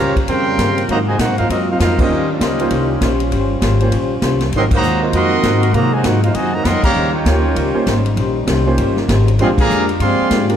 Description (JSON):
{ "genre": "jazz, big band swing", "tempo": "198 BPM", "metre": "4/4", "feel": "swing 62% on 8ths", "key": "Eb major", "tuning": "A4 = 441 Hz", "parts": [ { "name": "warm trumpet section", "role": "melody", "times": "0.0-10.5 s", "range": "C4 to C6", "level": "-19 LUFS", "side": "right 1 dB", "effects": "none" }, { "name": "warm trombone section", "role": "second line", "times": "0.0-10.5 s", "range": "C3 to G4", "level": "-20 LUFS", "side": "right 2 dB", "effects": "none" }, { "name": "vintage hollow-body jazz guitar", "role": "accompaniment", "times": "0.0-10.5 s", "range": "Ab2 to C5", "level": "-23 LUFS", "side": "left 6 dB", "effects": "none" }, { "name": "warm baby grand piano", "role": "accompaniment", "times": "0.0-10.6 s", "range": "Ab3 to Db5", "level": "-22 LUFS", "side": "right 4 dB", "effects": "none" }, { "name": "warm trombone section", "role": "sustained chords", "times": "0.0-10.6 s", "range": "C3 to C5", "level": "-24 LUFS", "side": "equal", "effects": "none" }, { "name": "upright bass", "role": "bass", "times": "0.0-10.6 s", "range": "G1 to C3", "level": "-18 LUFS", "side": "equal", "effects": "none" }, { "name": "swinging big-band drum kit", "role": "drums", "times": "0.2-10.5 s", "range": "crash cymbal, hi-hat, kick drum, ride cymbal, snare drum", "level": "-21 LUFS", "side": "equal", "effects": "none" } ], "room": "moderate scoring stage reverb, RT60 1.5 s", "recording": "dark, warm production", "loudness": "-13 LUFS", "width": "side -9 dB against mid", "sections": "0.0-10.6 A section", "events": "band accent 1.9, 4.7, 6.8, 9.5", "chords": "0.0 Eb13; 0.9 Ab13; 2.1 Eb13; 4.5 Ab13; 7.0 Eb13; 9.4 Bb13", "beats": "0.28 0.58 | 0.89 1.19 1.49 1.80 | 2.10 2.40 2.71 3.01 | 3.31 3.62 3.92 4.22 | 4.53 4.83 5.13 5.44 | 5.74 6.05 6.35 6.65 | 6.96 7.26 7.57 7.87 | 8.17 8.48 8.78 9.09 | 9.39 9.69 10.00 10.30" }